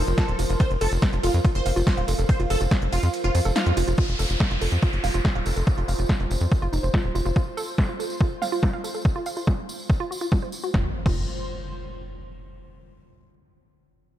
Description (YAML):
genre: psychedelic trance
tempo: 142 BPM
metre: 4/4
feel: straight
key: F major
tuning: A4 = 440 Hz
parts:
  - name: evolving wavetable pad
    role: sustained chords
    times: 0.0-4.0 s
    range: F3 to Bb4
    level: -36 LUFS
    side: left 2 dB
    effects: none
  - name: woody wave-folded pluck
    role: riff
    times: 0.0-11.3 s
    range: Eb4 to F5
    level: -31 LUFS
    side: moving between left 1 dB and right 6 dB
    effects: chorus, auto-pan, sidechain pumping, dub echo
  - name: tight sequencer bass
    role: bass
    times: 0.0-7.3, 10.7-11.3 s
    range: Eb1 to F2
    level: -24 LUFS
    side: equal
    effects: none
  - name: airy breathy pad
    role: texture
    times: 0.0-12.4 s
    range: F4 to C6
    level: -34 LUFS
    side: right 1 dB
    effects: chorus, sidechain pumping
  - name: big-room dance drum kit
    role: drums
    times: 0.1-11.1 s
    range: crash cymbal, hi-hat, ride cymbal, snare drum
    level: -32 LUFS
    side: equal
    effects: overdrive, low-pass filter on hats, low-pass filter on cymbals, low-pass filter on snare, low-pass filter on room
  - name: tambourine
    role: percussion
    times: 0.1-10.7 s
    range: none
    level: -39 LUFS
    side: right 2 dB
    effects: none
  - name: supersaw stab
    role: melody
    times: 0.2-3.8 s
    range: F4 to C5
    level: -30 LUFS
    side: right 1 dB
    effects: phaser, sidechain pumping, dub echo
  - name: electronic kick drum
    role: drums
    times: 0.2-11.1 s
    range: none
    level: -21 LUFS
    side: equal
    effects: overdrive
  - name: downlifter and impact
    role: sound effects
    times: 4.0-7.4, 10.8-12.4 s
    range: none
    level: -33 LUFS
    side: equal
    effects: none
room: little or no reverb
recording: dark, warm production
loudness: -21 LUFS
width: side -12 dB against mid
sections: 0.0-4.0 A section; 4.0-10.7 B section; 10.7-12.4 C section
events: drop 0.0-4.0; kick drops out 3.1-4.0; band accent 3.6; fade-out on analog synth pad 4.0-10.7; filter sweep on drum 4.0-10.7; filter sweep on synth arpeggio sound 4.0-10.7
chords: 0.0 F5